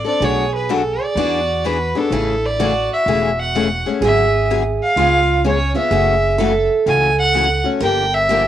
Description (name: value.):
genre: acoustic string swing (jazz manouche).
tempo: 126 BPM.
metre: 4/4.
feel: swing 64% on 8ths.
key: A major.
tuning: A4 = 439 Hz.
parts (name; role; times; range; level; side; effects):
warm violin; melody; 0.0-8.5 s; A4 to G#5; -18 LUFS; equal; none.
picked steel-string acoustic guitar; second line; 0.0-8.5 s; B3 to Bb4; -21 LUFS; right 6 dB; cassette tape.
picked steel-string acoustic guitar; accompaniment; 0.0-8.4 s; B2 to A4; -21 LUFS; left 7 dB; cassette tape.
upright bass; bass; 0.0-8.5 s; E1 to E2; -22 LUFS; equal; none.
room: moderate booth ambience, RT60 0.2 s.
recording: home recording on cassette.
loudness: -14 LUFS.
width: side -11 dB against mid.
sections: 0.0-5.9 A section; 5.9-8.5 B section.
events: none.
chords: 0.2 Bm7; 1.2 E7; 2.1 Amaj7; 4.0 G#m7b5; 5.0 C#7; 5.9 F#m7; 7.8 Gm7.